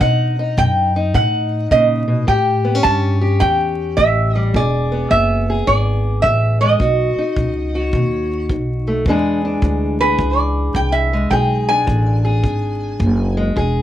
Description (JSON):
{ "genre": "acoustic country blues, solo or duo", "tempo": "106 BPM", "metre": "4/4", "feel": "swing 65% on 8ths", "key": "unclear", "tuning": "A4 = 440 Hz", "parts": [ { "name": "lap resonator guitar", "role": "melody", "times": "0.0-13.3 s", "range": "B4 to A5", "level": "-17 LUFS", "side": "right 2 dB", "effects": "none" }, { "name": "fingerpicked steel-string acoustic guitar", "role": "accompaniment", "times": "0.0-13.8 s", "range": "E2 to G#4", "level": "-20 LUFS", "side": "left 2 dB", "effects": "none" }, { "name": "upright bass", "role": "bass", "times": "0.0-13.8 s", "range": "E1 to B2", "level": "-18 LUFS", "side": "equal", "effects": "none" }, { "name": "kick drum", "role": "drums", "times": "0.0-13.7 s", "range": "none", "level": "-23 LUFS", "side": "equal", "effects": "none" } ], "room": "light reverb", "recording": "vinyl crackle", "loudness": "-14 LUFS", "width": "side -11 dB against mid", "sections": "0.0-9.1 A section; 9.1-13.8 B section", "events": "resonator guitar played with a steel bar solo 9.1-13.8", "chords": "0.0 B7; 2.3 A7; 4.5 E7; 6.8 B; 9.1 E7", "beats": "| 0.01 0.57 1.14 1.71 | 2.27 2.84 3.41 3.97 | 4.54 5.10 5.67 6.23 | 6.80 7.36 7.93 8.49 | 9.06 9.62 10.19 10.75 | 11.31 11.88 12.44 13.01 | 13.57" }